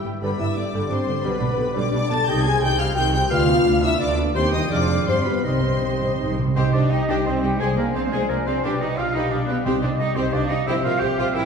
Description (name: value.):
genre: classical.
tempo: 174 BPM.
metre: 3/4.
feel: rubato.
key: C minor.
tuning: A4 = 441 Hz.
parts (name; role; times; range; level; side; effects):
clear symphonic violin section; melody; 0.0-11.4 s; B4 to A6; -30 LUFS; left 3 dB; none.
clear oboe; second line; 0.0-11.5 s; G4 to G5; -30 LUFS; equal; none.
dark clarinet; second line; 0.0-11.5 s; G4 to F5; -33 LUFS; left 2 dB; none.
mellow hollow large flute ensemble; second line; 0.0-11.5 s; B4 to A5; -29 LUFS; left 1 dB; none.
rich symphonic violin section; second line; 0.0-11.4 s; G4 to A5; -30 LUFS; left 4 dB; none.
mellow French horn section; sustained chords; 0.0-11.5 s; F3 to A4; -27 LUFS; left 2 dB; none.
concert harp; arpeggios; 0.0-11.5 s; F2 to F6; -29 LUFS; left 2 dB; none.
warm symphonic viola section; accompaniment; 0.1-11.4 s; D3 to Ab4; -30 LUFS; right 2 dB; none.
clear symphonic cello section; bass; 0.1-11.5 s; D2 to G4; -26 LUFS; right 3 dB; none.
rich studio double bass section; bass; 0.1-11.4 s; F1 to Eb2; -28 LUFS; right 2 dB; none.
timpani; percussion; 5.5-6.5, 9.7-10.1 s; C3; -27 LUFS; right 4 dB; none.
room: wet scoring stage reverb, RT60 1.6 s.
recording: heard from further back in the room.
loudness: -19 LUFS.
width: side -6 dB against mid.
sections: 0.0-6.6 A section; 6.6-11.5 B section.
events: timpani fill 5.5-6.6.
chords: 0.2 G; 1.2 G/B; 2.3 Cm; 3.3 Bdim/D; 4.4 Cm/Eb; 4.7 Ddim/F; 5.1 G7; 5.5 Cm; 7.6 Dm7b5/C; 8.6 G/B; 9.7 Cm; 10.7 C7/Bb.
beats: | 0.23 0.57 0.91 | 1.25 1.58 1.93 | 2.28 2.63 2.97 | 3.32 3.67 4.02 | 4.36 4.71 5.08 | 5.45 5.83 6.20 | 6.56 6.92 7.26 | 7.61 7.95 8.30 | 8.64 8.99 9.32 | 9.66 10.00 10.33 | 10.67 11.01 11.35.